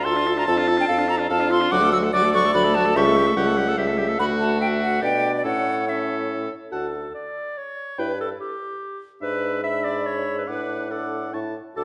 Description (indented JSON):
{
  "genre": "quick classical-period movement for wind quintet",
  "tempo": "144 BPM",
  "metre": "3/4",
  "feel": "straight",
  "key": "D major",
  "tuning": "A4 = 441 Hz",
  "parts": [
    { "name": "hollow concert flute", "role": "melody", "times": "0.0-11.8 s", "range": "D5 to E6", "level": "-26 LUFS", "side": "equal", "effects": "none" },
    { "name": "bright oboe", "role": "second line", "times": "0.0-11.8 s", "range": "F4 to A5", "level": "-33 LUFS", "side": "equal", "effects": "none" },
    { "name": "bright clarinet", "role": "accompaniment", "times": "0.0-11.8 s", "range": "G4 to A5", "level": "-29 LUFS", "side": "equal", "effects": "none" },
    { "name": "mellow French horn", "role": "accompaniment", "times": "0.0-11.8 s", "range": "F#3 to F#4", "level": "-30 LUFS", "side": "equal", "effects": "none" },
    { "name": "mellow bassoon", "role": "bass", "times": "0.1-11.8 s", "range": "C#2 to B2", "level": "-27 LUFS", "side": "equal", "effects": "none" }
  ],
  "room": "wet recital hall reverb, RT60 1.5 s",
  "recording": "nothing above 10.9 kHz",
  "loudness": "-22 LUFS",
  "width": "mono",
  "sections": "0.0-6.7 A section; 6.7-11.8 B section",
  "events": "none",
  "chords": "0.5 Dm/F; 1.7 D; 3.0 A7/C#; 4.2 D; 5.0 G/B; 5.4 A; 6.7 D5; 8.0 Em/G (rootless); 9.2 E7/G#; 10.5 D/A; 11.3 A5",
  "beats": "0.06 | 0.48 0.89 1.31 | 1.72 2.13 2.54 | 2.95 3.36 3.77 | 4.19 4.60 5.02 | 5.45 5.87 6.30 | 6.72 7.15 7.57 | 7.99 8.40 8.81 | 9.22 9.64 10.06 | 10.48 10.91 11.34 | 11.77"
}